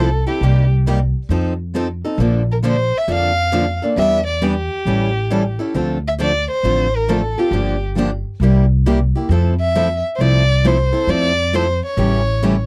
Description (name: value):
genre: acoustic string swing (jazz manouche)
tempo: 135 BPM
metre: 4/4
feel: swing 65% on 8ths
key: F major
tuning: A4 = 437 Hz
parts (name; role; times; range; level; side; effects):
- warm violin; melody; 0.0-12.7 s; G4 to F5; -22 LUFS; equal; none
- picked steel-string acoustic guitar; accompaniment; 0.0-12.5 s; C3 to A4; -24 LUFS; equal; none
- picked steel-string acoustic guitar; accompaniment; 0.0-12.5 s; C3 to B4; -24 LUFS; equal; none
- upright bass; bass; 0.0-12.7 s; G1 to F2; -20 LUFS; equal; none
room: little or no reverb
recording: dry, close 1970s-style studio recording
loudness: -17 LUFS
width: mono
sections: 0.0-12.7 A section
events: none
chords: 0.4 Cm7; 1.3 F7; 2.2 Bbmaj7; 4.0 Em7; 4.9 A7; 5.7 Dm7; 7.5 Gm7; 8.4 C7; 9.3 Fmaj7; 12.0 A7